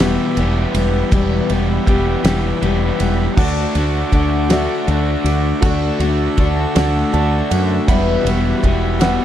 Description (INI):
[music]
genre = folk rock and heartland rock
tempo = 53 BPM (dotted quarters)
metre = 6/8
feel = straight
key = D major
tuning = A4 = 440 Hz
[part]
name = picked twelve-string acoustic guitar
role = accompaniment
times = 0.0-9.2 s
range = E2 to F#4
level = -21 LUFS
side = left 7 dB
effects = none
[part]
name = accordion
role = sustained chords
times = 0.0-9.2 s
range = G3 to E6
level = -27 LUFS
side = right 4 dB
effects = none
[part]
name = crunchy overdriven guitar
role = riff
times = 0.0-9.2 s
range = E2 to G4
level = -21 LUFS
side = right 1 dB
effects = none
[part]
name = woody fretless electric bass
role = bass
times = 0.0-9.2 s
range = E1 to F#2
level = -18 LUFS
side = equal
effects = none
[part]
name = damped 70s drum kit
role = drums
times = 0.0-9.2 s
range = crash cymbal, kick drum, ride cymbal, snare drum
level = -20 LUFS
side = equal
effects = none
[part]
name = dark upright piano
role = accompaniment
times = 3.4-9.2 s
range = F#4 to A5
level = -26 LUFS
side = right 6 dB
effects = none
[sound]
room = light reverb, studio ambience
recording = dark, warm production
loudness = -14 LUFS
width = side -11 dB against mid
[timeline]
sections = 0.0-9.2 A section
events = upright piano fill 6.8-7.9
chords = 0.0 Emadd9; 3.4 D; 7.9 Emadd9